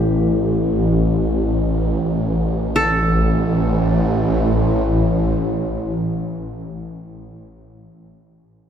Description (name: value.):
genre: world meditative, free-time meditation music.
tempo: free time.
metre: none.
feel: none.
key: unclear.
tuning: A4 = 440 Hz.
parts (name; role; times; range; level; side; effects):
swarming drone; drone; 0.0-6.3 s; A1; -17 LUFS; equal; built-in reverb.
qanun; texture; 0.0-6.3 s; G4 to A4; -23 LUFS; equal; none.
room: wet church reverb, RT60 3.6 s.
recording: dark, warm production.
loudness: -16 LUFS.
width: side -8 dB against mid.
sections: 0.0-2.8 A section; 2.8-6.5 B section.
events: none.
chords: none.